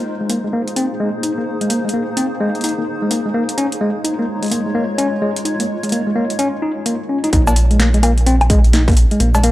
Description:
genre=IDM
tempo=128 BPM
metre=4/4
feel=swing 62% on 16ths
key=Bb minor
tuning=A4 = 440 Hz
part: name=granular cloud pad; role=sustained chords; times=0.0-7.3 s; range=Ab3 to Db5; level=-23 LUFS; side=equal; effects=built-in reverb
part: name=tine electric piano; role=arpeggios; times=0.0-9.5 s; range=Ab3 to Eb4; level=-19 LUFS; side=left 1 dB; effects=low-pass filter, analog delay
part: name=booming analog drum machine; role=drums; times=0.3-9.5 s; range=bongos, cowbell, hi-hat, shaker, snare drum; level=-21 LUFS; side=equal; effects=none
part: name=round analog bass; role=bass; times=7.3-9.5 s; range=Bb1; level=-13 LUFS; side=equal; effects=tube saturation
part: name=electronic kick drum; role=drums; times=7.3-8.9 s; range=none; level=-14 LUFS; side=equal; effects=distortion
room=light reverb, digital ambience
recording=dry, gritty hardware recording, cassette tape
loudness=-14 LUFS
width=side -16 dB against mid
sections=0.0-7.3 A section; 7.3-9.5 B section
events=filter sweep on tine electric piano 0.0-7.3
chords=0.0 Bb9sus4; 3.6 Eb9sus4; 7.3 Bb7(no3)

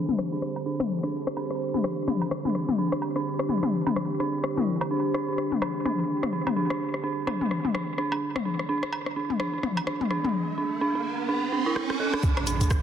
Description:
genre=minimal techno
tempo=127 BPM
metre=4/4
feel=swing 59% on 16ths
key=unclear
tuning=A4 = 439 Hz
part: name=deep dark ambient pad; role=texture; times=0.0-10.3 s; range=D4 to A5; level=-32 LUFS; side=right 1 dB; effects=chorus, built-in reverb, sidechain pumping
part: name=techno drum kit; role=percussion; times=0.1-12.8 s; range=cowbell, rim click, toms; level=-28 LUFS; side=left 4 dB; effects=soft clipping on snare, dub echo
part: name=dark detuned synth bell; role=riff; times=0.3-12.6 s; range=D4 to A4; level=-30 LUFS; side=right 3 dB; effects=chorus, sidechain pumping, low-pass filter, digital delay
part: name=riser and impact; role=sound effects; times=10.0-12.8 s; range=none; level=-31 LUFS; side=right 4 dB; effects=none
part: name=minimal click drum kit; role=drums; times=11.8-12.8 s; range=cabasa, hi-hat, rim click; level=-32 LUFS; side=right 1 dB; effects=soft clipping on snare
part: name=electronic kick drum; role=drums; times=12.2-12.8 s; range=none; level=-24 LUFS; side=equal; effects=none
part: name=punchy sub bass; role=bass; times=12.6-12.7 s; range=D2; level=-23 LUFS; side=right 1 dB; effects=sidechain pumping
room=moderate plate reverb, RT60 2.1 s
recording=dense, heavily limited modern master, low-pass filter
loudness=-25 LUFS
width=side -8 dB against mid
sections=0.0-12.2 A section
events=filter sweep on synth bell 0.0-12.2; filter sweep 0.0-12.2; riser 10.0-12.2; drum fill 11.8-12.2; impact 12.2-12.8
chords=0.0 D5; 12.2 N.C.

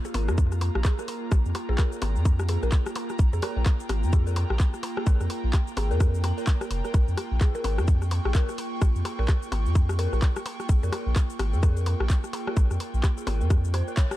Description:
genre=minimal techno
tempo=128 BPM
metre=4/4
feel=swing 60% on 16ths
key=Bb dorian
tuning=A4 = 440 Hz
part: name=techno drum kit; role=drums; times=0.0-14.2 s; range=handclaps, hi-hat, shaker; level=-38 LUFS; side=equal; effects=overdrive
part: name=electronic percussion blips and rim click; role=percussion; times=0.0-14.2 s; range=none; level=-35 LUFS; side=left 3 dB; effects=ping-pong delay
part: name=airy breathy pad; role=texture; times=0.0-14.2 s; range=Bb3 to Db6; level=-35 LUFS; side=right 2 dB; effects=chorus, sidechain pumping
part: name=dark detuned synth bell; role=riff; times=0.1-14.0 s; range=Ab4 to Bb5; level=-37 LUFS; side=left 1 dB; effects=chorus, phaser, sidechain pumping, ping-pong delay
part: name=round analog bass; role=bass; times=0.1-13.8 s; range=F1 to F2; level=-25 LUFS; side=equal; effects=tube saturation, sidechain pumping
part: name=electronic kick drum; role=drums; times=0.4-14.1 s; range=none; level=-21 LUFS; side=equal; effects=overdrive
room=digital ambience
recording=dark, warm production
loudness=-22 LUFS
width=side -15 dB against mid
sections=0.0-14.2 A section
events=band accent 14.0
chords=0.0 Bb5

